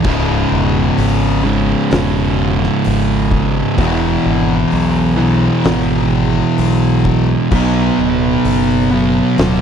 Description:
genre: stoner and doom metal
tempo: 64 BPM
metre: 4/4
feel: straight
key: C# minor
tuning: A4 = 440 Hz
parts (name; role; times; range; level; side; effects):
- thick fuzz guitar; riff; 0.0-9.6 s; C#2 to B3; -18 LUFS; left 11 dB; distortion
- thick fuzz guitar; riff; 0.0-9.6 s; C#2 to B3; -16 LUFS; right 8 dB; distortion
- thick fuzz guitar; riff; 0.0-9.6 s; C#2 to B3; -20 LUFS; equal; distortion
- growling fingered electric bass; bass; 0.0-9.6 s; C#1 to B1; -18 LUFS; left 1 dB; overdrive
- oversized low-tuned drum kit; drums; 0.0-9.6 s; crash cymbal, hi-hat, kick drum, snare drum; -22 LUFS; left 1 dB; none
room: little or no reverb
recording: dry, close 1970s-style studio recording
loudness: -12 LUFS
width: side -7 dB against mid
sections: 0.0-9.6 A section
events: none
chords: 0.1 C#m; 3.8 E; 7.5 Bm

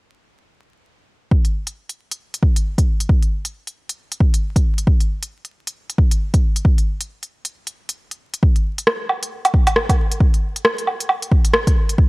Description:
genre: future garage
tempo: 135 BPM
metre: 4/4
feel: swing 60% on 16ths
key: none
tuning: none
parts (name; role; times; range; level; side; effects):
- electronic kick drum; drums; 1.3-12.1 s; none; -15 LUFS; equal; overdrive
- organic electronic drum kit; drums; 1.4-12.0 s; hi-hat, rim click, woodblock; -19 LUFS; right 1 dB; overdrive
room: little or no reverb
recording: dry, gritty hardware recording, vinyl crackle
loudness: -16 LUFS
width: side -24 dB against mid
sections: 1.3-8.4 A section; 8.4-12.1 B section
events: break 7.5-8.4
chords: none

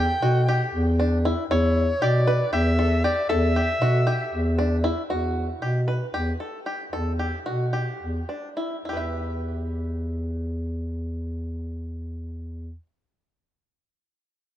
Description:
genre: contemporary instrumental, chamber music in an uneven meter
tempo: 210-234 BPM (eighths)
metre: 7/8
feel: straight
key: E minor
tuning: A4 = 442 Hz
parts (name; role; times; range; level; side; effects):
- clear soprano saxophone; melody; 0.0-4.5 s; C#5 to G5; -26 LUFS; left 1 dB; ping-pong delay
- bluegrass banjo; arpeggios; 0.0-12.9 s; D4 to E5; -28 LUFS; left 1 dB; none
- dark bass clarinet; bass; 0.0-12.7 s; E2 to B2; -24 LUFS; equal; none
room: moderate plate reverb, RT60 3.1 s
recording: dreamy mix soaked in reverb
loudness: -22 LUFS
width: side -12 dB against mid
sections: 0.0-5.1 A section; 5.1-8.8 B section; 8.8-12.8 C section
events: slowing down 5.1-8.8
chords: 0.0 Em; 5.1 Emadd9; 8.8 Em

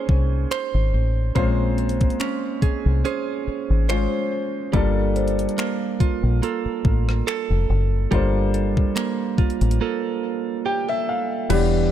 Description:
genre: contemporary R&B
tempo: 71 BPM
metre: 4/4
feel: swing 54% on 16ths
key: unclear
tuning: A4 = 445 Hz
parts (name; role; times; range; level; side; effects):
- clear grand piano; accompaniment; 0.0-11.9 s; E3 to G5; -27 LUFS; left 7 dB; none
- direct-recorded clean electric guitar; arpeggios; 0.0-11.9 s; E3 to C5; -25 LUFS; right 11 dB; none
- deep dub fingered electric bass; bass; 0.1-11.9 s; E1 to C2; -20 LUFS; left 1 dB; none
- clean 12-bit digital drum machine; drums; 0.1-11.7 s; crash cymbal, finger snaps, hi-hat, kick drum, rim click; -23 LUFS; left 1 dB; overdrive
- celesta; texture; 5.2-11.9 s; C5 to F5; -32 LUFS; left 6 dB; ping-pong delay
room: little or no reverb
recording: none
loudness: -19 LUFS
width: side -11 dB against mid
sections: 0.0-11.5 A section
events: break 9.8-11.5; grand piano fill 10.2-11.5; kick muted 11.5-11.9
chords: 0.0 Bbm9; 4.7 Gm9

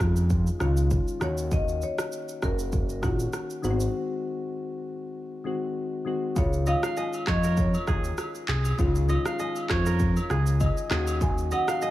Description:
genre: afrobeats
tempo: 99 BPM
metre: 4/4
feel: swing 55% on 16ths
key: Db major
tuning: A4 = 440 Hz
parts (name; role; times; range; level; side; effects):
- soft electric-piano-like synth keys; accompaniment; 0.0-11.9 s; Eb3 to Ab5; -31 LUFS; left 3 dB; chorus
- fat analog bass; bass; 0.0-11.5 s; Gb1 to F2; -25 LUFS; equal; none
- afro-pop drum kit; drums; 0.0-11.9 s; handclaps, kick drum, rim click, shaker; -29 LUFS; equal; none
- marimba with medium mallets; melody; 1.2-11.9 s; Bb4 to Ab5; -32 LUFS; equal; digital delay
- kora; riff; 6.7-11.9 s; Ab4 to F5; -33 LUFS; right 5 dB; digital delay
- agogo bells and woodblock; percussion; 6.7-11.9 s; none; -40 LUFS; left 3 dB; none
room: small room ambience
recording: none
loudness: -24 LUFS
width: side -15 dB against mid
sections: 0.0-6.4 A section; 6.4-11.9 B section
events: break 3.9-6.4; synth keys fill 10.0-11.2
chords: 0.0 Dbadd9; 1.2 Ebm7; 3.6 Ab7; 6.4 Dbadd9; 10.9 Ebm7

